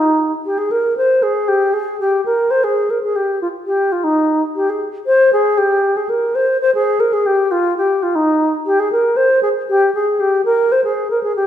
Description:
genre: medieval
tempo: 117 BPM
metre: 2/4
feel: straight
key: unclear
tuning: A4 = 440 Hz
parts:
  - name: wooden-headed alto flute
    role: solo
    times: 0.0-11.5 s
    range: Eb4 to C5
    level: -14 LUFS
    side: equal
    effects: none
room: wet recital hall reverb, RT60 1.5 s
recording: minimal, uncompressed stereo recording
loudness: -14 LUFS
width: side -10 dB against mid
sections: 0.0-6.6 A section; 6.6-11.5 A section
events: none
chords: none

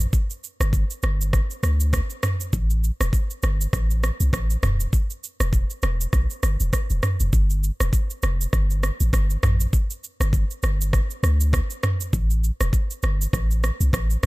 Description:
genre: afrobeats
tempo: 100 BPM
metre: 4/4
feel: swing 58% on 16ths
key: unclear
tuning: A4 = 440 Hz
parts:
  - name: punchy sub bass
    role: bass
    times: 0.0-14.3 s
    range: E1 to D2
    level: -21 LUFS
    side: equal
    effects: none
  - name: afro-pop drum kit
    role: drums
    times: 0.0-14.3 s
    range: kick drum, rim click, shaker, toms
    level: -23 LUFS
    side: equal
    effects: none
room: little or no reverb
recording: none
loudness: -20 LUFS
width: side -21 dB against mid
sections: 0.0-14.3 A section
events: none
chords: none

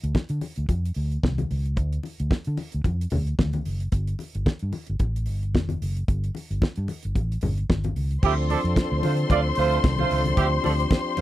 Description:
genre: disco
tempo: 111 BPM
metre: 4/4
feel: swing 56% on 16ths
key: D minor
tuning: A4 = 440 Hz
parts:
  - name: fingered electric bass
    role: bass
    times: 0.0-11.2 s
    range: F1 to D3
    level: -25 LUFS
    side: equal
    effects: none
  - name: damped 70s drum kit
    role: drums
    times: 0.0-11.2 s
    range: crash cymbal, hi-hat, kick drum, snare drum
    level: -23 LUFS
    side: equal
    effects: none
  - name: congas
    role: percussion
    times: 0.1-11.2 s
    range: none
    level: -31 LUFS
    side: left 4 dB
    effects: none
  - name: warm symphonic string section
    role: second line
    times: 8.2-11.2 s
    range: C5 to C6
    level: -28 LUFS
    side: left 4 dB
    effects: none
  - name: tonewheel organ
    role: sustained chords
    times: 8.2-11.2 s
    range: F3 to A4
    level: -29 LUFS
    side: left 1 dB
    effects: overdrive, chorus vibrato, slow rotary speaker
  - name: clear horn section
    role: stabs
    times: 8.2-11.2 s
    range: F3 to D5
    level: -24 LUFS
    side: right 8 dB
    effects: none
room: little or no reverb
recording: dry, close 1970s-style studio recording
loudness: -22 LUFS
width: side -14 dB against mid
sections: 0.0-8.2 A section; 8.2-11.2 B section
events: none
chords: 0.0 N.C.; 8.2 Dm7

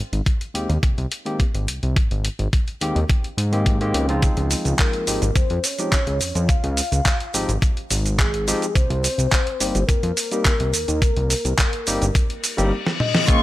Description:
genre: nu-disco, nu disco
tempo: 106 BPM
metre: 4/4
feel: straight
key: unclear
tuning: A4 = 438 Hz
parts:
  - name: fat analog bass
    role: bass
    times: 0.1-13.4 s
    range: G1 to Ab2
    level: -22 LUFS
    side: equal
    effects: sidechain pumping
  - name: dusty soul sampler-style drum kit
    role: drums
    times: 0.1-13.4 s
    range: cabasa, handclaps, hi-hat, snare drum, toms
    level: -24 LUFS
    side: equal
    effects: studio ambience
  - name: electronic kick drum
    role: drums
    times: 0.3-13.4 s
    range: none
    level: -19 LUFS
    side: equal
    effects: studio ambience
  - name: barky tine electric piano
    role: accompaniment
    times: 0.5-13.4 s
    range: Db3 to G4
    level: -26 LUFS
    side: left 1 dB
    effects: overdrive, tape echo
  - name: soft octave-layered synth lead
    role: melody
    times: 4.8-13.4 s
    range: Ab4 to F5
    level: -27 LUFS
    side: left 2 dB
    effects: chorus, ping-pong delay
  - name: reverse cymbal and impact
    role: sound effects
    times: 12.5-13.4 s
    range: none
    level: -26 LUFS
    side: left 6 dB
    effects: none
  - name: dark studio string section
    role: sustained chords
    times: 13.3-13.4 s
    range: Bb3 to Db6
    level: -20 LUFS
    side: equal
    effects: sidechain pumping
room: digital ambience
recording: none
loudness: -18 LUFS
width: side -16 dB against mid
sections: 0.0-13.3 A section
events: reverse cymbal 12.5-13.3; drum fill 12.9-13.3; band accent 13.1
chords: 0.0 Abmaj7; 4.2 Dbmaj9#11; 8.8 Cm7

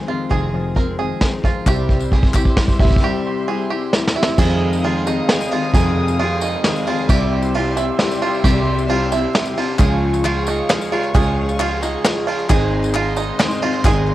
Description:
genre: indie folk with a building arrangement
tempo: 133 BPM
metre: 3/4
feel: straight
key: F minor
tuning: A4 = 439 Hz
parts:
  - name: fingerpicked steel-string acoustic guitar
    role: accompaniment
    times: 0.0-1.7 s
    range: F2 to Ab4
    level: -27 LUFS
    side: left 5 dB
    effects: none
  - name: picked steel-string acoustic guitar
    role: accompaniment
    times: 0.0-14.1 s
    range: F2 to Ab4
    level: -22 LUFS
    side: left 5 dB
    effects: none
  - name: bluegrass banjo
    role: arpeggios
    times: 0.0-14.1 s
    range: Eb4 to Bb4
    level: -24 LUFS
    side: right 7 dB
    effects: tape echo
  - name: fingered electric bass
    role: bass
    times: 0.3-14.1 s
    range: F1 to F2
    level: -21 LUFS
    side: equal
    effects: none
  - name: vintage brush drum kit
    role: drums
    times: 0.3-14.0 s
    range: crash cymbal, hi-hat, kick drum, ride cymbal, snare drum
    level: -19 LUFS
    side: equal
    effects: cassette tape
  - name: clear upright piano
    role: accompaniment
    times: 1.7-14.1 s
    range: F1 to E5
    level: -28 LUFS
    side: right 7 dB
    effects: none
  - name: warm studio string section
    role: sustained chords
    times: 1.7-14.1 s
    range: G4 to Eb6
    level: -27 LUFS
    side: equal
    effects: none
  - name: group handclap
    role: percussion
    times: 1.7-2.7, 9.8-14.1 s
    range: none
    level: -27 LUFS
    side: left 6 dB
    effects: none
  - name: tambourine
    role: percussion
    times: 1.7-14.0 s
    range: none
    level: -37 LUFS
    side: left 7 dB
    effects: none
room: light reverb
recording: home recording on cassette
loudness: -15 LUFS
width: side -14 dB against mid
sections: 0.0-4.4 A section; 4.4-14.1 B section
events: build-up 0.0-4.4; drum fill 0.0-3.0, 3.9-4.4; break 3.0-4.4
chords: 0.0 Fm7; 1.7 C; 4.4 Fm7; 7.1 C; 9.8 Db; 12.5 Ab

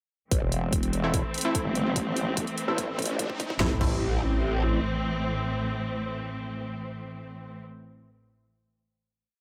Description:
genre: heavy wobble dubstep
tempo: 146 BPM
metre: 4/4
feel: half-time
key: A minor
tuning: A4 = 441 Hz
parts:
  - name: clear symphonic string section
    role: sustained chords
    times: 0.3-7.6 s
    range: A2 to C4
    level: -34 LUFS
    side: equal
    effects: sidechain pumping, low-pass filter
  - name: growl bass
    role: bass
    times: 0.3-4.8 s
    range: A1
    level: -30 LUFS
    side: equal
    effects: chorus, overdrive
  - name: dubstep drum kit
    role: drums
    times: 0.3-3.9 s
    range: crash cymbal, hi-hat, snare drum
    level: -35 LUFS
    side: equal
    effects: none
  - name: electronic kick drum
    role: drums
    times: 0.3-3.9 s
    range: none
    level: -33 LUFS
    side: equal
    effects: none
  - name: riser and impact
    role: sound effects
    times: 2.4-7.7 s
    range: none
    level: -38 LUFS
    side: equal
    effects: none
  - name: vowel-sweep wobble bass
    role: bass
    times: 0.4-2.5 s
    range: E1 to C2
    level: -30 LUFS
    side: equal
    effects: chorus, overdrive
  - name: orchestra-hit-like synth stab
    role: stabs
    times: 1.0-7.8 s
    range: A3 to E4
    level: -35 LUFS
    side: equal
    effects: built-in reverb, delay
room: light reverb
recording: high-pass filter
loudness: -28 LUFS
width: mono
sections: 0.3-3.6 build; 3.6-6.9 final chord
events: build-up 0.3-3.6; filter sweep 0.3-3.6; riser 2.4-3.6; drum fill 2.0-3.6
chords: 0.3 Am

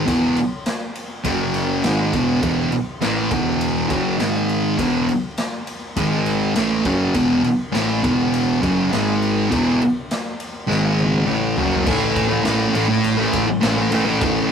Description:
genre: garage rock duo or trio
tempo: 102 BPM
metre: 4/4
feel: straight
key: E major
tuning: A4 = 441 Hz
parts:
  - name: thick fuzz guitar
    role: riff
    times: 0.0-14.5 s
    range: E2 to A3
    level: -17 LUFS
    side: equal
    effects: distortion
  - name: fuzz picked electric bass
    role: bass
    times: 0.0-14.4 s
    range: E1 to A1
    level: -28 LUFS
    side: equal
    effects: overdrive, tube saturation
  - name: raw garage drum kit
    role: drums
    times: 0.1-14.4 s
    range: crash cymbal, kick drum, ride cymbal, snare drum, toms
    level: -26 LUFS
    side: left 1 dB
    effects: none
room: moderate small room ambience, RT60 0.5 s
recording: rough rehearsal-room recording, warm saturation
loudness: -17 LUFS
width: side -7 dB against mid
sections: 0.0-11.9 A section; 11.9-14.5 B section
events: drum fill 10.7-11.9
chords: 0.1 E5; 1.3 F#5; 1.8 E; 4.2 G#5; 4.8 E5; 6.0 G#5; 6.6 E5; 8.9 G#5; 9.5 E5; 10.7 G#5; 11.3 F#m7; 11.9 A5

